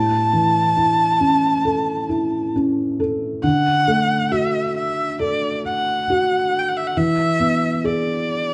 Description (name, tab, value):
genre	children's music, lullaby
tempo	68 BPM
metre	4/4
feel	straight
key	D major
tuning	A4 = 440 Hz
part	clear erhu	melody	0.0-8.5 s	D5 to A5	-22 LUFS	equal	none
part	felt-muted upright piano	accompaniment	0.0-8.5 s	A2 to A4	-22 LUFS	equal	none
room	moderate recital hall reverb, RT60 1.4 s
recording	dark, warm production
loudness	-19 LUFS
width	mono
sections	0.0-3.4 A section; 3.4-8.5 B section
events	none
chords	0.0 A; 3.4 D; 7.0 E7